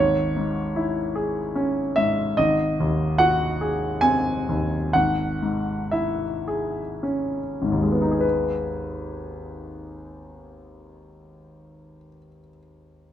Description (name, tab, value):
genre	classical, romantic character piece for solo piano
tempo	46-75 BPM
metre	3/4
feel	rubato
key	G# minor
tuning	A4 = 440 Hz
part	clear concert grand piano	solo	0.0-13.1 s	G#1 to G#5	-21 LUFS	equal	none
room	light reverb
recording	none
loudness	-21 LUFS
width	side -10 dB against mid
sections	0.0-8.2 A section; 8.2-11.5 B section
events	slowing down 1.1-8.2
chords	0.0 C#m/G#; 2.4 G#7; 4.9 C#m/G#; 8.2 G#m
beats	0.74 1.54 | 2.36 3.19 4.03 | 4.93 5.91 7.01 | 8.23 9.31 10.39